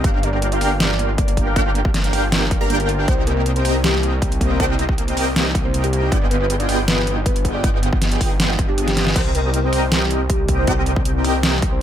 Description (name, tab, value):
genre	future bass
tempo	158 BPM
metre	4/4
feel	half-time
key	C minor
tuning	A4 = 439 Hz
part	soft octave-layered synth lead	melody	0.0-11.8 s	G4 to F5	-27 LUFS	left 1 dB	chorus, phaser, sidechain pumping, dub echo
part	wide unison pluck	arpeggios	0.0-11.8 s	G5 to Bb5	-32 LUFS	right 2 dB	none
part	wide unison pluck	arpeggios	0.0-9.1 s	Bb3 to Bb4	-30 LUFS	right 3 dB	sidechain pumping, dub echo
part	supersaw stab	riff	0.0-11.8 s	B3 to Bb5	-23 LUFS	equal	sidechain pumping
part	wide detuned saw bass	bass	0.0-11.8 s	G1 to C2	-21 LUFS	equal	chorus, sidechain pumping
part	dubstep drum kit	drums	0.0-11.7 s	crash cymbal, hi-hat, snare drum	-22 LUFS	equal	overdrive
part	electronic kick drum	drums	0.0-11.7 s	none	-20 LUFS	equal	overdrive
part	shimmering ambient pad	sustained chords	10.4-11.8 s	Eb3 to G4	-32 LUFS	left 1 dB	none
room	little or no reverb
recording	none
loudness	-16 LUFS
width	side -10 dB against mid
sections	0.0-9.2 A section; 9.2-11.8 A section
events	drop 0.0-9.2, 9.2-11.8; drum fill 8.9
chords	0.0 Gm7; 3.1 Cm7; 6.1 G7b9b13; 9.2 Cm7